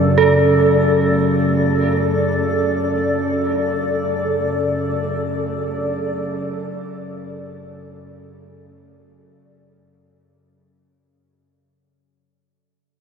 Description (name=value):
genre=dark ambient drone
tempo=free time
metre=none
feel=none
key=unclear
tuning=A4 = 440 Hz
part: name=granular cloud pad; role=sustained chords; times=0.0-11.1 s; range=A4 to D5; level=-21 LUFS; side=equal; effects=built-in reverb, shimmer reverb
part: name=bowed-like drone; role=drone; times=0.0-11.2 s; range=F#2 to C#3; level=-20 LUFS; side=equal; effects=built-in reverb
part: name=bronze singing bowl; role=texture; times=0.0-11.1 s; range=none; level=barely audible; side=none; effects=none
part: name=dark detuned synth bell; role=arpeggios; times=0.2-11.1 s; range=A4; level=-21 LUFS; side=right 5 dB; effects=chorus, tremolo, diffuse ambient delay, shimmer reverb
room=wet huge ambient reverb, RT60 7.3 s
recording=none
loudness=-16 LUFS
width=side -6 dB against mid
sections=0.0-11.1 A section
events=fade-out 0.0-11.1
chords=0.0 D5